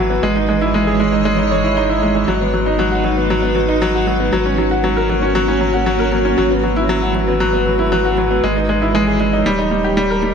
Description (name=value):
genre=piano and strings electronica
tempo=117 BPM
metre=4/4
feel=straight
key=G# minor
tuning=A4 = 440 Hz
part: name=granular cloud pad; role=sustained chords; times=0.0-10.3 s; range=E3 to D#5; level=-20 LUFS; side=right 1 dB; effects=built-in reverb
part: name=clear upright piano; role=riff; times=0.0-10.3 s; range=F#3 to C#5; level=-16 LUFS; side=equal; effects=tape echo
part: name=warm sub bass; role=bass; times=0.0-10.3 s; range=D#1 to G#1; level=-22 LUFS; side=equal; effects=none
room=moderate lush hall reverb, RT60 1.7 s, studio ambience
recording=none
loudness=-14 LUFS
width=side -6 dB against mid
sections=0.0-10.3 A section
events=none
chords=0.2 C#madd9/G#; 2.3 G#m7; 4.3 F#/G#; 6.4 Eadd9/G#; 8.4 C#madd9/G#; 9.5 D#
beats=| 0.23 0.74 1.25 1.76 | 2.28 2.79 3.30 3.82 | 4.33 4.84 5.36 5.87 | 6.38 6.89 7.41 7.92 | 8.43 8.94 9.46 9.97